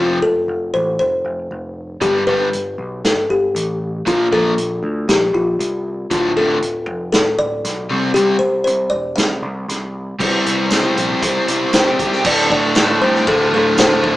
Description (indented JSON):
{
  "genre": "classic rock",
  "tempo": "117 BPM",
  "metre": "4/4",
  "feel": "straight",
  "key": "D minor",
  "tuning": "A4 = 441 Hz",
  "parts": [
    { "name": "kalimba", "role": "melody", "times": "0.0-14.2 s", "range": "F4 to E5", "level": "-18 LUFS", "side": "left 1 dB", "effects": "none" },
    { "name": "biting overdriven guitar", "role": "riff", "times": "0.0-14.2 s", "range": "D2 to C5", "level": "-20 LUFS", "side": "left 3 dB", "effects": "none" },
    { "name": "overdriven electric guitar", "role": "riff", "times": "0.0-14.2 s", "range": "D2 to C5", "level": "-21 LUFS", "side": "right 3 dB", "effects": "none" },
    { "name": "growling picked electric bass", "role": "bass", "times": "0.0-14.2 s", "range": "D1 to D2", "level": "-27 LUFS", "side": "equal", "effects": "overdrive" },
    { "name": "vintage drum kit", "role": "drums", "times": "2.0-14.2 s", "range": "crash cymbal, hi-hat, kick drum, ride cymbal, snare drum", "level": "-18 LUFS", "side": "equal", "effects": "none" },
    { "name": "tambourine", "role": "percussion", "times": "10.7-13.9 s", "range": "none", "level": "-30 LUFS", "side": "right 4 dB", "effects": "none" },
    { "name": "octave-fuzz lead guitar", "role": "second line", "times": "11.7-14.2 s", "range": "F4 to A4", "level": "-23 LUFS", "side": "right 2 dB", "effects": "distortion" }
  ],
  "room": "moderate large studio reverb, RT60 0.9 s",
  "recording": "band playing live in one room, small speaker sound",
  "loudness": "-14 LUFS",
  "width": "side -16 dB against mid",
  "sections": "0.0-10.2 A section; 10.2-12.2 B section; 12.2-14.2 C section",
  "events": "half time 0.0-10.2",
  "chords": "0.0 F; 2.0 G; 4.1 Bb5; 6.1 Dm; 7.9 C; 12.2 Dm",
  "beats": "0.48 0.99 1.50 | 2.02 2.53 3.04 3.55 | 4.06 4.57 5.08 5.59 | 6.11 6.62 7.13 7.64 | 8.15 8.66 9.17 9.69 | 10.20 10.71 11.22 11.73 | 12.24 12.75 13.26 13.77"
}